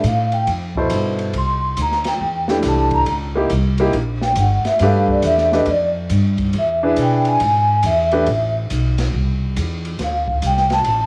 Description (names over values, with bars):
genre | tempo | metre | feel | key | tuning
jazz, small-group swing and bop | 138 BPM | 4/4 | swing 65% on 8ths | G mixolydian | A4 = 442 Hz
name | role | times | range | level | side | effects
upright bass | bass | 0.0-11.1 s | G1 to B2 | -22 LUFS | equal | none
open jazz drum kit | drums | 0.0-11.0 s | hi-hat, kick drum, ride cymbal, snare drum | -30 LUFS | equal | cassette tape
vibraphone with soft mallets | melody | 0.1-11.1 s | D5 to C6 | -20 LUFS | equal | cassette tape
warm upright piano | accompaniment | 0.8-8.3 s | B2 to C5 | -22 LUFS | equal | cassette tape
room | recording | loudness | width
light reverb, studio ambience | home recording on cassette | -18 LUFS | mono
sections
0.0-11.1 A section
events
vibraphone solo 0.0-11.1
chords
0.0 G7; 1.3 C; 3.1 C#dim7; 4.8 G7; 6.5 E7; 8.3 Am; 10.0 D7(no3)